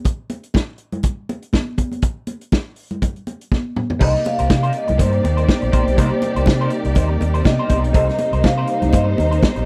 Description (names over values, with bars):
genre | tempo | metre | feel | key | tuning
disco | 122 BPM | 4/4 | swing 56% on 16ths | C dorian | A4 = 439 Hz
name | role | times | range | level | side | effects
congas | percussion | 0.0-9.6 s | none | -28 LUFS | equal | none
warm soul drum kit | drums | 0.1-9.7 s | crash cymbal, hi-hat, kick drum, snare drum, toms | -19 LUFS | equal | none
vibraphone with soft mallets | melody | 4.0-9.4 s | C5 to F5 | -24 LUFS | equal | none
dark studio string section | second line | 4.0-9.7 s | G3 to D5 | -29 LUFS | equal | none
electric guitar at the edge of break-up | accompaniment | 4.0-9.6 s | Eb4 to C5 | -30 LUFS | equal | wah
muted clav | accompaniment | 4.0-9.7 s | C3 to C5 | -31 LUFS | equal | phaser
dark studio string section | sustained chords | 4.0-9.7 s | C3 to Eb4 | -29 LUFS | equal | none
overdriven fingered electric bass | bass | 4.0-9.6 s | Bb1 to C3 | -22 LUFS | equal | none
room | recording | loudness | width
little or no reverb | none | -18 LUFS | mono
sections
0.0-4.0 A section; 4.0-9.7 B section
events
drum fill 3.5-4.0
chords
0.0 N.C.; 4.0 Cm7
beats
| 0.05 0.55 1.04 1.54 | 2.03 2.53 3.02 3.52 | 4.01 4.50 4.99 5.49 | 5.98 6.47 6.96 7.45 | 7.95 8.44 8.93 9.42